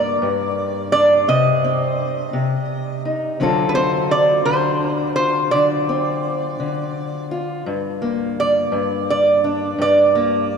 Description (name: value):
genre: acoustic country blues, solo or duo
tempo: 56 BPM (dotted quarters)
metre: 12/8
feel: straight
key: G harmonic minor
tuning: A4 = 443 Hz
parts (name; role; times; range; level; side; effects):
- lap resonator guitar; melody; 0.0-10.6 s; B4 to Eb5; -18 LUFS; right 2 dB; none
- fingerpicked steel-string acoustic guitar; accompaniment; 0.0-10.6 s; G2 to A4; -21 LUFS; left 2 dB; none
room: wet cathedral reverb, RT60 5.2 s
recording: recorded in a church or concert hall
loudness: -16 LUFS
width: side -6 dB against mid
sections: 0.0-7.7 A section; 7.7-10.6 B section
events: resonator guitar played with a steel bar solo 7.7-10.6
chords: 0.0 Gm; 1.3 Cm; 3.4 D7#9; 7.7 Gm